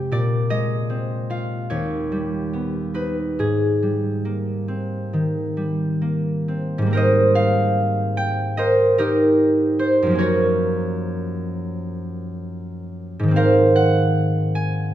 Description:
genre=classical, solo harp piece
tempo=62-77 BPM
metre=4/4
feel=rubato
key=unclear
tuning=A4 = 441 Hz
part: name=concert harp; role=solo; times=0.0-14.9 s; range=Eb2 to C6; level=-18 LUFS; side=equal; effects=none
room=moderate scoring stage reverb, RT60 1.8 s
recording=minimal, uncompressed stereo recording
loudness=-18 LUFS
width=side -12 dB against mid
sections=0.0-6.9 A section; 6.9-14.9 B section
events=none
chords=0.1 Bb9; 1.7 Ebaug7; 3.4 Abmaj9; 10.2 Gbmaj7; 13.4 Ab69

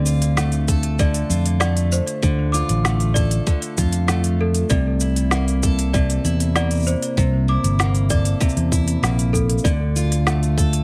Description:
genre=folktronica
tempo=97 BPM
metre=4/4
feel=straight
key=D minor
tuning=A4 = 441 Hz
part: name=worn celesta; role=second line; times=0.0-9.8 s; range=A4 to D6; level=-31 LUFS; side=equal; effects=tape echo
part: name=picked steel-string acoustic guitar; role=arpeggios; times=0.0-10.8 s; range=C3 to A4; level=-27 LUFS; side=equal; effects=vintage 12-bit sampler grit, tape echo
part: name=fingered electric bass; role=bass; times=0.0-10.8 s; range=G1 to F2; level=-22 LUFS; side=equal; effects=none
part: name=organic electronic drum kit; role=drums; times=0.1-10.8 s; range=cabasa, hi-hat, snare drum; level=-27 LUFS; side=equal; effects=none
part: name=electronic kick drum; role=drums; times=0.7-10.7 s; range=none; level=-22 LUFS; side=equal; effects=none
room=little or no reverb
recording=none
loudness=-19 LUFS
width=mono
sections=0.0-10.8 A section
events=none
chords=0.0 Dm7; 4.7 C13; 9.6 Dm

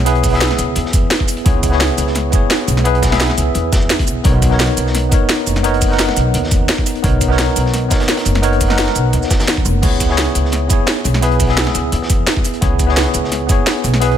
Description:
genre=liquid drum and bass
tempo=172 BPM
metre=4/4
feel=swing 54% on 16ths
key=C# dorian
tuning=A4 = 440 Hz
part: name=tine electric piano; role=accompaniment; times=0.0-14.2 s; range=B3 to F#5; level=-18 LUFS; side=equal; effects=medium stereo tremolo, vintage 12-bit sampler grit, ping-pong delay
part: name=upright bass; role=bass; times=0.0-14.2 s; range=F#1 to E2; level=-17 LUFS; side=equal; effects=none
part: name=crunchy breakbeat drum kit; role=drums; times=0.1-14.2 s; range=hi-hat, snare drum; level=-26 LUFS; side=equal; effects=high-pass filter on hats, high-pass filter on snare, high-pass filter on room
part: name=drum and bass drum kit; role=drums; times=0.1-14.1 s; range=crash cymbal, hi-hat, shaker, snare drum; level=-19 LUFS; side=equal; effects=none
part: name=electronic kick drum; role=drums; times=0.2-13.6 s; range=none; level=-16 LUFS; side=equal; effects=none
room=light reverb, small room ambience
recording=none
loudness=-12 LUFS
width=side -10 dB against mid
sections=0.0-14.2 A section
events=none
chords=0.0 C#m7; 4.2 Bmaj9; 9.8 C#m7

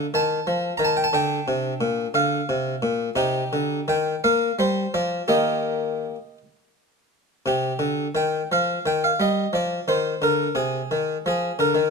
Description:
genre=classical, baroque-style suite movement for harpsichord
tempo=55-60 BPM (dotted quarters)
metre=6/8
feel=rubato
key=unclear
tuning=A4 = 439 Hz
part: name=harpsichord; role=solo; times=0.0-11.9 s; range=Bb2 to Bb5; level=-20 LUFS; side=equal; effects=none
room=moderate stone room reverb, RT60 1.0 s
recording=dark, warm production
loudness=-21 LUFS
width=side -4 dB against mid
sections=0.0-7.5 A section; 7.5-11.9 A section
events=none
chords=0.0 F7; 1.1 Bb; 3.2 Cm; 4.2 Bb5; 5.3 Eb; 7.5 Cm (rootless); 9.6 Fm

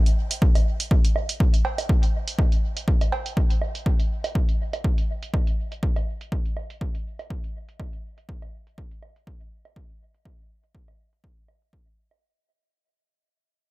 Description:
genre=techno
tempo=122 BPM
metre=4/4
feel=swing 55% on 16ths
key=none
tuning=none
part: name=electronic hi-hat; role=drums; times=0.1-12.2 s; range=none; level=-32 LUFS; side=right 4 dB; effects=low-pass filter on snare, low-pass filter on hats, low-pass filter on room
part: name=electronic kick drum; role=drums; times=0.4-11.8 s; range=none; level=-22 LUFS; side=equal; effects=none
part: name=woodblock and cowbell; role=percussion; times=0.6-12.2 s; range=none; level=-34 LUFS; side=right 4 dB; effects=sidechain pumping on perc, dub echo
room=little or no reverb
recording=none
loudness=-21 LUFS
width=side -20 dB against mid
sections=0.0-12.2 A section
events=fade-out 0.0-12.2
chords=none

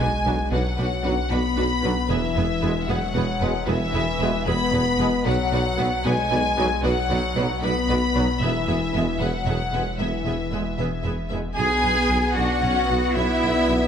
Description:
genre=cinematic, hybrid orchestral and electronic film score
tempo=76 BPM (dotted quarters)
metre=6/8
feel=straight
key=B dorian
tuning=A4 = 440 Hz
part: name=rich symphonic violin section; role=melody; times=0.0-13.9 s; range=E5 to B5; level=-27 LUFS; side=left 3 dB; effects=none
part: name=warm symphonic violin section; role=second line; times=0.0-13.9 s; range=B4 to G#5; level=-30 LUFS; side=left 3 dB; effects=none
part: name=clear symphonic viola section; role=accompaniment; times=0.0-13.9 s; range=B3 to G#4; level=-31 LUFS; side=right 1 dB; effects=none
part: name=dark French horn section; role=sustained chords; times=0.0-13.9 s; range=E3 to F#4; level=-28 LUFS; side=left 4 dB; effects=none
part: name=mellow tuba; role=bass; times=0.0-13.8 s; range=E1 to B1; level=-29 LUFS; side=right 3 dB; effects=none
part: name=rich studio double bass section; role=bass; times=0.0-13.8 s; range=E1 to B1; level=-30 LUFS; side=right 3 dB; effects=none
part: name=warm sub bass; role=bass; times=0.0-13.9 s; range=E1 to B1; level=-31 LUFS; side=left 1 dB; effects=none
part: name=warm symphonic cello section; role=bass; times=0.0-13.9 s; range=E2 to G#4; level=-28 LUFS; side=right 2 dB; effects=none
part: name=sub drop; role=sound effects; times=0.0-0.5 s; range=none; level=-40 LUFS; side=equal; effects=none
part: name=clear trombone section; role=sustained chords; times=0.3-13.9 s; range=B2 to B3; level=-31 LUFS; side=right 2 dB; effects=none
room=wet scoring stage reverb, RT60 1.9 s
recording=none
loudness=-20 LUFS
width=side -8 dB against mid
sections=0.0-11.6 A section; 11.6-13.9 B section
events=impact 0.0-0.5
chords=0.0 Bm; 2.1 E; 5.3 Bm; 8.4 E; 11.6 Bm

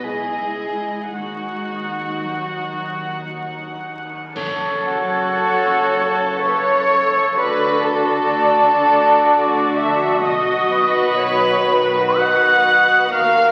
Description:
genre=cinematic, emotional film score for orchestra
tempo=54-66 BPM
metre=3/4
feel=rubato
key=F# minor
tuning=A4 = 440 Hz
part: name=warm chamber violin section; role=melody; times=0.0-13.5 s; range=F#4 to F#5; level=-28 LUFS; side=equal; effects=none
part: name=warm chamber violin section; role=second line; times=0.0-13.5 s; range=F#4 to F#5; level=-24 LUFS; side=equal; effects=none
part: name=dark symphonic viola section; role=accompaniment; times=0.0-13.5 s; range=D#4 to E5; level=-27 LUFS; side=equal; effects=none
part: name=dark studio cello section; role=bass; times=0.0-13.5 s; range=D#2 to G#3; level=-34 LUFS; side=equal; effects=none
part: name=warm symphonic double bass section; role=bass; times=0.0-13.5 s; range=F#1 to D#2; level=-38 LUFS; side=equal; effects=none
part: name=cymbal swell, clash cymbals and concert bass drum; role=percussion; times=1.1-6.3 s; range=none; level=-38 LUFS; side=equal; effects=none
part: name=clear clarinet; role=second line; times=4.3-13.5 s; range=F#4 to A4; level=-30 LUFS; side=equal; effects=none
part: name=warm oboe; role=second line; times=4.4-13.5 s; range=A#4 to D#5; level=-25 LUFS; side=equal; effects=none
part: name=clear French horn section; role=sustained chords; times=4.4-13.5 s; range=C#3 to A#4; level=-30 LUFS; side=equal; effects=none
part: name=silver concert flute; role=second line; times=4.9-13.5 s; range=F#5 to F#6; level=-20 LUFS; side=equal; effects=none
room=wet concert hall reverb, RT60 1.9 s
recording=very old 78 rpm record, vinyl crackle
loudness=-17 LUFS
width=mono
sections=0.0-4.4 A section; 4.4-13.5 A section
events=band accent 4.4-5.3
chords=0.0 N.C.; 1.1 D#m; 4.4 F#m; 7.4 D; 10.2 B

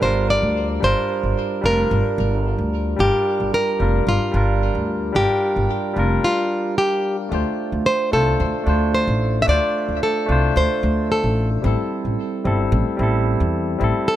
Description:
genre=sunset chillout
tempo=111 BPM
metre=4/4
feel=straight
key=G dorian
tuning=A4 = 440 Hz
part: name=nylon-string guitar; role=melody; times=0.0-14.2 s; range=F4 to E5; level=-21 LUFS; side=equal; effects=ping-pong delay
part: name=barky tine electric piano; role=accompaniment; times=0.0-14.2 s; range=G3 to C5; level=-23 LUFS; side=moving between left 4 dB and right 4 dB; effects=auto-pan, tape echo
part: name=upright bass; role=bass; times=0.0-13.9 s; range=F1 to E2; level=-21 LUFS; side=equal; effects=none
room=light reverb, small room ambience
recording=none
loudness=-17 LUFS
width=side -12 dB against mid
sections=0.0-7.3 A section; 7.3-14.2 B section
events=none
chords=0.0 Gm7; 7.3 Dm7; 11.6 Am7

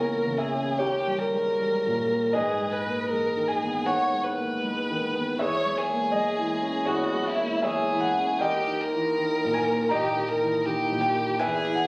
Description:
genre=classical, romantic duo for violin and grand piano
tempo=80 BPM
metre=4/4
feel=uneven beats, rubato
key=unclear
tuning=A4 = 439 Hz
part: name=rich violin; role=melody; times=0.0-11.9 s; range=E4 to C#5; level=-29 LUFS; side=equal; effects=none
part: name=clear baby grand piano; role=accompaniment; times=0.0-11.9 s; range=C#2 to A#5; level=-29 LUFS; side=equal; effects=none
room=moderate recital hall reverb, RT60 1.6 s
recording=recorded on a phone in the room, studio reverb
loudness=-26 LUFS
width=mono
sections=0.0-11.9 A section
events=none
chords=0.0 A#dim/C#; 0.8 D#7; 2.3 G#m; 5.4 C#m/E; 8.4 D#

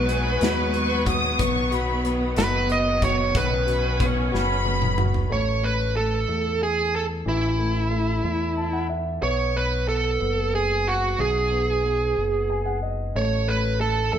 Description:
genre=six-eight pop ballad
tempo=61 BPM (dotted quarters)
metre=6/8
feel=straight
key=B major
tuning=A4 = 440 Hz
part: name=smooth overdriven lead guitar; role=melody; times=0.0-14.2 s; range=E4 to D#5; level=-24 LUFS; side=right 3 dB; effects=none
part: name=warm grand piano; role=accompaniment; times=0.0-14.2 s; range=E3 to A5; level=-30 LUFS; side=left 3 dB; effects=none
part: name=clear studio string section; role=sustained chords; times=0.0-5.3 s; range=D#3 to C#4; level=-28 LUFS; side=equal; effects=none
part: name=fingered electric bass with an envelope filter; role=bass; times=0.0-14.2 s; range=F#1 to E2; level=-26 LUFS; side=left 1 dB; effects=none
part: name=warm symphonic violin section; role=second line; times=0.1-5.3 s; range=F#5 to D#6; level=-28 LUFS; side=left 1 dB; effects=ping-pong delay
part: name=modern studio drum kit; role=drums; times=0.1-5.3 s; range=hi-hat, kick drum, snare drum, toms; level=-27 LUFS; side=equal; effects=none
room=moderate stone room reverb, RT60 1.3 s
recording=band playing live in one room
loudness=-21 LUFS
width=side -9 dB against mid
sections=0.0-5.3 A section; 5.3-14.2 B section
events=drum fill 4.3-5.3; grand piano fill 8.2-9.2, 12.2-13.2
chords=0.0 G#m7/B; 1.4 B; 3.3 Badd9; 5.3 A5; 9.2 B5; 13.2 A5

